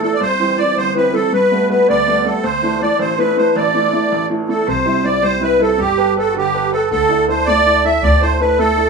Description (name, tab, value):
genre	celtic folk, Celtic jig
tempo	107 BPM (dotted quarters)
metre	6/8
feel	straight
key	unclear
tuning	A4 = 439 Hz
part	musette accordion	melody	0.0-8.9 s	G4 to E5	-16 LUFS	right 3 dB	none
part	baroque flute	second line	0.0-8.9 s	F#4 to E5	-18 LUFS	left 2 dB	none
part	bright upright piano	accompaniment	0.0-8.9 s	G1 to B4	-19 LUFS	right 2 dB	none
part	upright bass	bass	4.7-8.9 s	G1 to D2	-22 LUFS	equal	none
room	wet small room ambience, RT60 0.5 s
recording	band playing live in one room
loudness	-13 LUFS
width	side -4 dB against mid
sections	0.0-4.7 A section; 4.7-8.9 A section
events	none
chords	0.2 C; 1.3 Gadd9; 2.4 Dsus2; 4.7 C; 5.8 Gadd9; 6.9 Dsus2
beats	| 0.20 0.76 | 1.32 1.88 | 2.44 3.00 | 3.56 4.12 | 4.67 5.23 | 5.79 6.35 | 6.91 7.47 | 8.02 8.58